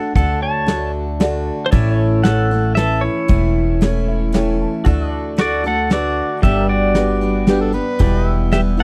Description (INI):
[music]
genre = honky-tonk and classic country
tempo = 115 BPM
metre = 3/4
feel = straight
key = D major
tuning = A4 = 440 Hz
[part]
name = pedal steel guitar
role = melody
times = 0.0-8.8 s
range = E4 to A5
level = -22 LUFS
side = equal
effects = none
[part]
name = picked steel-string acoustic guitar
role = accompaniment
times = 0.0-8.8 s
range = E2 to G4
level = -25 LUFS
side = equal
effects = none
[part]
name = pedal steel guitar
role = sustained chords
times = 0.0-8.8 s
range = G3 to F#5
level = -29 LUFS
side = equal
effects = subtle chorus
[part]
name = upright bass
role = bass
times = 0.2-8.8 s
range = E1 to D2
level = -22 LUFS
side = equal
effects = none
[part]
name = soft brush drum kit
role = drums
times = 0.2-8.6 s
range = hi-hat, kick drum, snare drum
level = -18 LUFS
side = equal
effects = none
[part]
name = dark concert grand piano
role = accompaniment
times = 0.7-8.8 s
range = G3 to A5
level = -27 LUFS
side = equal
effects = none
[part]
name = overdriven harmonica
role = second line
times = 7.5-8.4 s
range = G4 to B4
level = -24 LUFS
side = equal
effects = none
[sound]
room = little or no reverb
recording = dry, close 1970s-style studio recording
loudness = -17 LUFS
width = mono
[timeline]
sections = 0.0-4.9 A section; 4.9-8.8 B section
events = grand piano fill 3.8-4.9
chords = 0.0 D; 1.7 A; 4.9 D; 6.4 G; 8.0 Em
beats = | 0.15 0.68 1.20 | 1.72 2.25 2.77 | 3.29 3.81 4.34 | 4.86 5.38 5.91 | 6.43 6.95 7.48 | 8.00 8.52